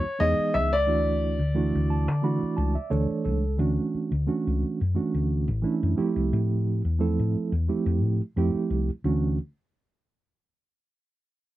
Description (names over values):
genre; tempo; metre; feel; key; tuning
electric jazz fusion; 88 BPM; 4/4; swing 53% on 16ths; D major; A4 = 435 Hz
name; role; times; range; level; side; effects
clear baby grand piano; melody; 0.0-2.9 s; C#5 to E5; -27 LUFS; left 1 dB; none
mellow reed electric piano; accompaniment; 0.0-9.4 s; E3 to B5; -26 LUFS; right 4 dB; fast tremolo
hollow-body short-scale fingered electric bass; bass; 0.0-9.4 s; A1 to D3; -25 LUFS; left 1 dB; none
room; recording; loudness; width
little or no reverb; dry, close 1970s-style studio recording; -23 LUFS; side -15 dB against mid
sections
0.0-3.6 A section; 3.6-9.1 B section; 9.1-11.6 C section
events
reed electric piano fill 1.6-3.6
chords
0.0 Emaj7; 0.9 Dmaj9; 6.0 Fmaj9; 9.1 Dmaj9